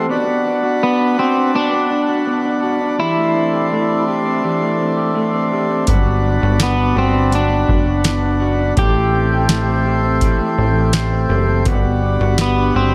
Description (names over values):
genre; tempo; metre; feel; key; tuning
dream pop; 83 BPM; 4/4; straight; G major; A4 = 441 Hz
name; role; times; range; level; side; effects
pedal harmonium; sustained chords; 0.0-12.9 s; G3 to C6; -23 LUFS; equal; none
electric guitar at the edge of break-up; arpeggios; 0.0-12.9 s; E3 to G4; -22 LUFS; equal; subtle chorus, digital delay
electric guitar at the edge of break-up; melody; 0.8-12.9 s; B3 to G4; -21 LUFS; equal; spring reverb, digital delay
plucky analog bass; bass; 5.9-12.9 s; F#1 to A1; -20 LUFS; equal; none
booming analog drum machine; drums; 5.9-12.6 s; hi-hat, kick drum, snare drum; -19 LUFS; equal; none
room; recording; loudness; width
light reverb; none; -16 LUFS; mono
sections
0.0-12.9 A section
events
none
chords
0.1 Bm; 3.0 D9sus4; 5.9 Gmaj7; 8.8 Am7; 11.7 Gmaj7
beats
| 0.09 0.81 1.54 2.26 | 2.98 3.71 4.43 5.15 | 5.88 6.60 7.32 8.04 | 8.77 9.49 10.21 10.94 | 11.66 12.38